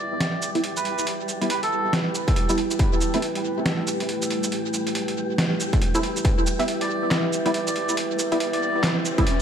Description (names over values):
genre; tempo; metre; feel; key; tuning
deep dubstep; 139 BPM; 4/4; swing 60% on 16ths, half-time; E minor; A4 = 441 Hz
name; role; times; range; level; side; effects
melodica; melody; 0.0-1.9, 6.8-8.8 s; A4 to D5; -30 LUFS; right 2 dB; low-pass filter, dub echo
dark analog pad; sustained chords; 0.0-9.4 s; A3 to E5; -29 LUFS; equal; chorus
soft dub sub bass; bass; 0.0-9.4 s; D1 to D2; -47 LUFS; equal; none
wind-like tuned noise texture; texture; 0.0-9.4 s; G3 to G4; -31 LUFS; equal; built-in reverb
trip hop sampler-style drum kit; drums; 0.2-9.4 s; handclaps, hi-hat, shaker, snare drum; -27 LUFS; right 1 dB; small room ambience, tape echo
filtered dub chord stab; stabs; 0.6-3.2, 5.9-9.2 s; G3 to E4; -27 LUFS; right 1 dB; ensemble chorus, tape echo
electronic kick drum; drums; 2.3-2.9, 5.7-6.4, 9.2-9.3 s; none; -21 LUFS; equal; distortion, small room ambience
riser; sound effects; 7.7-9.4 s; none; -36 LUFS; left 1 dB; none
room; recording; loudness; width
moderate plate reverb, RT60 2.1 s; echo-heavy mix, vinyl crackle; -21 LUFS; side -8 dB against mid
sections
0.0-9.4 A section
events
build-up 0.0-9.4; riser 7.7-9.4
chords
0.0 Em; 2.8 A5; 6.2 Em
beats
0.20 0.64 | 1.07 1.50 1.93 2.36 | 2.79 3.23 3.66 4.09 | 4.52 4.95 5.38 5.82 | 6.25 6.68 7.11 7.54 | 7.97 8.41 8.84 9.27